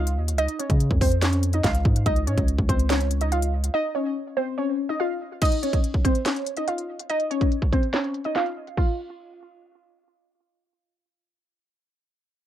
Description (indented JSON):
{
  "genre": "hip hop, trap",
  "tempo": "143 BPM",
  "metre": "4/4",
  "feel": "half-time",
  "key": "Db major",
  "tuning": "A4 = 440 Hz",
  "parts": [
    { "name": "warbly dusty pluck", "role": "melody", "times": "0.0-10.0 s", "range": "C4 to F5", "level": "-26 LUFS", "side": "equal", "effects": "chorus, phaser, digital delay" },
    { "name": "long sustained 808-style bass", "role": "bass", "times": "0.0-3.7 s", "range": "Db2 to Db3", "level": "-23 LUFS", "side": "equal", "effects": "none" },
    { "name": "trap drum kit", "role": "drums", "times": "0.1-8.9 s", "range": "crash cymbal, handclaps, hi-hat, kick drum, snare drum", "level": "-23 LUFS", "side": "equal", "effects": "none" }
  ],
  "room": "little or no reverb",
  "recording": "low-pass filter",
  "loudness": "-21 LUFS",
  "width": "side -11 dB against mid",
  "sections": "0.0-5.4 A section; 5.4-8.8 B section; 8.8-12.1 C section",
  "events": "break 3.7-5.4, 7.9-8.8",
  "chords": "0.0 Db; 8.8 N.C."
}